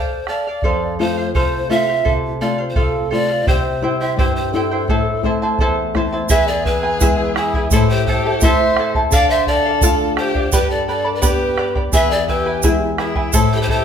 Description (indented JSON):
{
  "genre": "andean folk, Andean ensemble",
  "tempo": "85 BPM",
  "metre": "2/4",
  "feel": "straight",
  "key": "A minor",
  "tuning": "A4 = 437 Hz",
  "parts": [
    { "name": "breathy pan flute", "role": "melody", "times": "0.0-13.8 s", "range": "G#4 to F5", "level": "-21 LUFS", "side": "right 2 dB", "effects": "none" },
    { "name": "charango", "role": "accompaniment", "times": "0.0-13.8 s", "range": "E4 to B5", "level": "-21 LUFS", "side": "right 2 dB", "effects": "none" },
    { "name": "bombo", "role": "percussion", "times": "0.3-13.8 s", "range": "none", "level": "-20 LUFS", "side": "equal", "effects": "none" },
    { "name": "nylon-string guitar", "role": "accompaniment", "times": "0.6-13.8 s", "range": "E2 to G4", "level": "-21 LUFS", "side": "left 5 dB", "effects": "none" },
    { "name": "dark violin", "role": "second line", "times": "6.3-13.8 s", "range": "E4 to D5", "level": "-23 LUFS", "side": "left 2 dB", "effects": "none" },
    { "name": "tube shaker", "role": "percussion", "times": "6.3-13.5 s", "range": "none", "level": "-24 LUFS", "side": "right 5 dB", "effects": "none" }
  ],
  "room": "wet large studio reverb, RT60 0.9 s",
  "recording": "band playing live in one room",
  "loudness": "-15 LUFS",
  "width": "side -8 dB against mid",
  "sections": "0.0-6.3 A section; 6.3-13.8 B section",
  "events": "none",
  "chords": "0.0 Dm; 0.6 F; 3.5 C; 4.9 Am; 6.3 E; 7.7 Am; 9.1 Dm; 10.5 G; 11.9 E; 13.3 Am"
}